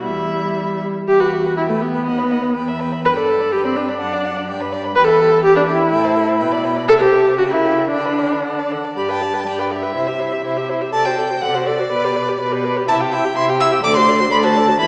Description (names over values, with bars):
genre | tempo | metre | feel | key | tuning
quick classical-period movement for string quartet | 123 BPM | 2/4 | rubato | E minor, G major from 5.0 s | A4 = 440 Hz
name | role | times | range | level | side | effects
rich violin | melody | 0.0-14.9 s | C5 to E6 | -25 LUFS | equal | none
rich violin | second line | 0.0-14.9 s | E4 to G5 | -27 LUFS | equal | none
rich viola | accompaniment | 0.0-14.9 s | G3 to B4 | -19 LUFS | equal | none
rich cello | bass | 0.0-14.9 s | D2 to D3 | -27 LUFS | equal | none
room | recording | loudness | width
wet recital hall reverb, RT60 1.5 s | heard from further back in the room, small speaker sound | -17 LUFS | mono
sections
0.0-1.1 A section; 1.1-9.0 A section; 9.0-14.9 B section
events
none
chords
0.0 Em; 2.1 B/D#; 2.6 Em; 3.0 G; 4.0 D/F#; 4.5 G; 5.0 Em; 5.9 Am7; 6.4 G/B; 6.9 Am/C; 7.4 C#dim7; 7.9 G/D; 9.0 G; 9.9 C; 10.9 D7/C; 11.9 G/B; 12.9 C; 13.8 D7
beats
| 0.04 0.57 | 1.08 1.57 | 2.06 2.56 | 3.05 3.53 | 4.01 4.49 | 4.96 5.44 | 5.92 6.40 | 6.89 7.38 | 7.91 8.44 | 8.96 9.46 | 9.95 10.44 | 10.93 11.43 | 11.92 12.40 | 12.88 13.36 | 13.84 14.32 | 14.80